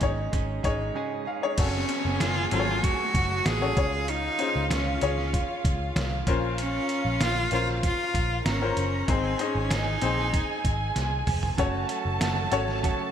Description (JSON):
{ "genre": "piano-driven pop", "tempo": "96 BPM", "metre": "4/4", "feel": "straight", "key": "unclear", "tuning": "A4 = 440 Hz", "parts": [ { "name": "bright upright piano", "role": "accompaniment", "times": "0.0-13.1 s", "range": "Ab2 to Ab5", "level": "-31 LUFS", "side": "left 6 dB", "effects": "none" }, { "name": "direct-recorded clean electric guitar", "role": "riff", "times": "0.0-1.6, 11.6-13.1 s", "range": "Gb2 to Ab4", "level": "-33 LUFS", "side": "right 8 dB", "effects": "spring reverb" }, { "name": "vintage muted picked electric bass", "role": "bass", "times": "0.0-12.9 s", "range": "F1 to Db2", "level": "-30 LUFS", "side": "equal", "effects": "none" }, { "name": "trip hop sampler-style drum kit", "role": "drums", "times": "0.0-13.0 s", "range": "crash cymbal, hi-hat, kick drum, snare drum, toms", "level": "-29 LUFS", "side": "equal", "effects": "none" }, { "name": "clear cello", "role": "melody", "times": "1.6-10.7 s", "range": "C4 to Ab4", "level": "-29 LUFS", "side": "equal", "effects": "none" }, { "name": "dark studio violin section", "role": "second line", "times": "1.6-13.1 s", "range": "F4 to Bb5", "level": "-33 LUFS", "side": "right 2 dB", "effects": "none" }, { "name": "downlifter", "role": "sound effects", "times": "1.6-6.6 s", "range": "none", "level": "-36 LUFS", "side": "equal", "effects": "none" } ], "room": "moderate lush hall reverb, RT60 2.1 s", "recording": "bright 1980s-style digital production", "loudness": "-24 LUFS", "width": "side -9 dB against mid", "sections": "0.0-1.6 A section; 1.6-13.1 B section", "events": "upright piano fill 0.6-1.6; break 1.0-1.6; drum fill 11.0-11.6", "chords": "0.0 Absus4; 1.6 Gbm; 3.8 Db; 6.3 Bbmadd9; 9.1 Ab; 11.6 Gbm" }